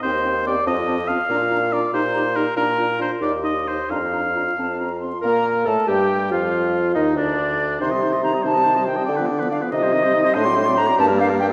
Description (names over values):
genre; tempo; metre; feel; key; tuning
quick classical-period movement for wind quintet; 94 BPM (dotted quarters); 6/8; straight; Bb major; A4 = 440 Hz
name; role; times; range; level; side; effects
warm oboe; second line; 0.0-11.5 s; D4 to F5; -26 LUFS; equal; none
dark clarinet; accompaniment; 0.0-11.5 s; Bb3 to Bb4; -30 LUFS; equal; none
mellow French horn; accompaniment; 0.0-11.5 s; D3 to Eb4; -28 LUFS; equal; none
mellow bassoon; bass; 0.0-11.5 s; D2 to D3; -26 LUFS; equal; none
silver concert flute; melody; 0.1-11.5 s; D5 to C6; -25 LUFS; equal; none
room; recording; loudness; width
wet scoring stage reverb, RT60 1.6 s; recorded in a church or concert hall, vinyl crackle; -20 LUFS; mono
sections
0.0-5.2 A section; 5.2-11.5 B section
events
none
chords
0.0 Cm/Eb; 0.7 F7(no3); 1.3 Bb; 1.9 Eb/Bb; 2.6 Bb; 3.2 Cm/Eb; 3.9 Bb/F (rootless); 4.6 F; 5.2 Bb5; 6.5 Ebsus2; 7.2 N.C.; 7.8 Cm; 9.1 Bdim/D; 9.7 Cm; 10.4 D7/A; 11.0 Gm